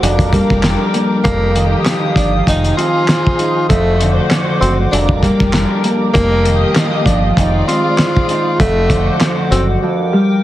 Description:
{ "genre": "hip hop, boom-bap hip-hop", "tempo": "98 BPM", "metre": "4/4", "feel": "swing 57% on 16ths", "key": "unclear", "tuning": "A4 = 440 Hz", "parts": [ { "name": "breathy tenor saxophone", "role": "melody", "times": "0.0-9.7 s", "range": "A3 to F4", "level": "-18 LUFS", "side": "equal", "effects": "high-pass filter, low-pass filter, ping-pong delay" }, { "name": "Celtic harp", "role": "accompaniment", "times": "0.0-10.4 s", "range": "F2 to F#4", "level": "-17 LUFS", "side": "equal", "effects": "cassette tape, high-pass filter, low-pass filter" }, { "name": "hollow soft pad", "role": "sustained chords", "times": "0.0-10.4 s", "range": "G4 to Eb6", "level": "-24 LUFS", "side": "equal", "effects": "chorus, high-pass filter, low-pass filter" }, { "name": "warm studio string section", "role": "stabs", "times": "0.0-9.8 s", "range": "Eb3 to Eb5", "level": "-22 LUFS", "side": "left 2 dB", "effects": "high-pass filter, low-pass filter, ping-pong delay" }, { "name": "deep dub fingered electric bass", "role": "bass", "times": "0.0-9.8 s", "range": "F1 to G1", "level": "-17 LUFS", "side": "equal", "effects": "none" }, { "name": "cloth-damped thuddy drum kit", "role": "drums", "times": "0.0-9.7 s", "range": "handclaps, hi-hat, kick drum, snare drum", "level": "-16 LUFS", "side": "equal", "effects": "none" } ], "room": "light reverb, small room ambience", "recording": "heavily compressed radio sound, multiband compression", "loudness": "-11 LUFS", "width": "side -14 dB against mid", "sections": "0.0-10.4 A section", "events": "drums muted 9.8-10.4", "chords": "0.0 Gm/F; 1.2 Ebadd9/F; 2.5 Fm7; 3.7 D7/F; 4.9 Gm/F; 6.1 Ebadd9/F; 7.4 Fm7; 8.6 D7/F; 9.8 Gm/F" }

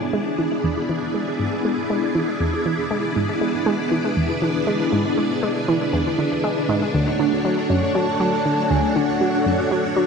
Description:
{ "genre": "ambient, sequencer-driven space music", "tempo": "119 BPM", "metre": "4/4", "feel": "straight", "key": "unclear", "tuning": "A4 = 440 Hz", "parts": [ { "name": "string machine, full ensemble", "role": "sustained chords", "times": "0.0-10.1 s", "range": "A3 to D5", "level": "-22 LUFS", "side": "left 1 dB", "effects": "phaser, ensemble chorus, shimmer reverb" }, { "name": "concert harp", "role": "arpeggios", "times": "0.0-1.3 s", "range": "none", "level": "barely audible", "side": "none", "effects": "none" }, { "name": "pulsing gated texture", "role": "texture", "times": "0.0-10.1 s", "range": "D4 to D7", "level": "-29 LUFS", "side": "right 4 dB", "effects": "chorus, built-in reverb, shimmer reverb" }, { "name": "analog pluck", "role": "riff", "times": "0.1-10.0 s", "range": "D2 to G#3", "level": "-23 LUFS", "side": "equal", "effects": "chorus, ping-pong delay" }, { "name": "soft octave-layered synth lead", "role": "melody", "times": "7.7-10.0 s", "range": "C#5 to A5", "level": "-25 LUFS", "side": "equal", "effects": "chorus, shimmer reverb, ping-pong delay" } ], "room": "wet plate reverb, RT60 2.9 s", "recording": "dark, warm production", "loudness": "-18 LUFS", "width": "side -5 dB against mid", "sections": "0.0-10.1 A section", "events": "none", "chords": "0.0 E7; 6.9 Dmaj7" }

